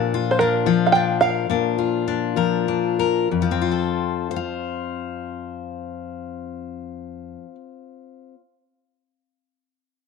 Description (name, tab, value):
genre	indie folk with a building arrangement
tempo	91-114 BPM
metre	3/4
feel	straight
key	unclear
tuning	A4 = 440 Hz
part	fingerpicked steel-string acoustic guitar	accompaniment	0.0-8.4 s	F2 to F5	-22 LUFS	left 8 dB	none
part	open-back banjo	melody	0.3-2.6 s	Bb4 to G5	-19 LUFS	right 5 dB	none
room	moderate spring reverb, RT60 1.4 s, studio reverb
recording	1960s-style stereo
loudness	-19 LUFS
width	side -4 dB against mid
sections	0.0-3.3 A section; 3.3-7.3 B section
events	slowing down 0.0-3.3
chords	0.0 Bb; 3.3 F